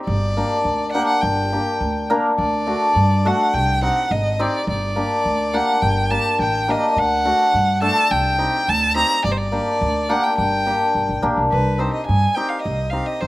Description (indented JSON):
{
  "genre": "klezmer",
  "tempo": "105 BPM",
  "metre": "2/4",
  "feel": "straight",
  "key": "G harmonic minor",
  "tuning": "A4 = 440 Hz",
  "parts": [
    { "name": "warm violin", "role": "melody", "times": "0.1-13.3 s", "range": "B4 to Bb5", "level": "-21 LUFS", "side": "right 1 dB", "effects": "slapback echo" },
    { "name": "upright bass", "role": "bass", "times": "0.1-13.3 s", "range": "G1 to G2", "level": "-23 LUFS", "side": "right 1 dB", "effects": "none" },
    { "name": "hammered dulcimer", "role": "accompaniment", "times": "0.4-13.1 s", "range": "A3 to Bb4", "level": "-20 LUFS", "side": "left 1 dB", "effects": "slapback echo" }
  ],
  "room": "little or no reverb",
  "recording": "recorded outdoors, with no room sound",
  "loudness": "-16 LUFS",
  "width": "side -18 dB against mid",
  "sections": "0.0-2.4 A section; 2.4-11.5 A section; 11.5-13.3 B section",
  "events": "none",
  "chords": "0.1 Gm; 2.4 D; 3.5 Cm; 4.7 Gm; 7.0 D; 8.1 Cm; 9.2 Gm; 11.5 Cm",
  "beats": "| 0.07 0.65 | 1.23 1.80 | 2.38 2.96 | 3.53 4.11 | 4.68 5.25 | 5.82 6.39 | 6.97 7.54 | 8.11 8.68 | 9.24 9.81 | 10.38 10.95 | 11.51 12.08 | 12.65 13.21"
}